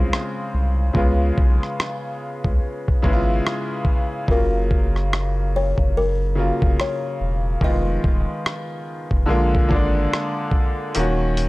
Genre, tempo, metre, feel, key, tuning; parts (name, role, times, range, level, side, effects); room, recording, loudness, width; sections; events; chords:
lo-fi hip hop; 72 BPM; 4/4; swing 60% on 16ths; Db major; A4 = 440 Hz
bright upright piano; accompaniment; 0.0-11.5 s; Db3 to Gb4; -24 LUFS; equal
saturated sub bass; bass; 0.0-11.5 s; Eb1 to Db2; -21 LUFS; equal; tube saturation
dusty soul sampler-style drum kit; drums; 0.1-11.5 s; hi-hat, kick drum, rim click; -20 LUFS; equal
buzzing kalimba; melody; 4.3-9.3 s; Bb4 to Eb5; -27 LUFS; left 2 dB
small room ambience; dry, gritty hardware recording, transformer saturation; -18 LUFS; side -20 dB against mid
0.0-11.5 A section
break 0.0-10.9; kick muted 10.9-11.5
0.0 Dbmaj7; 0.9 Db7; 4.3 Gbmaj7; 7.6 Fm7b5; 9.3 Bb7; 10.9 Ebm7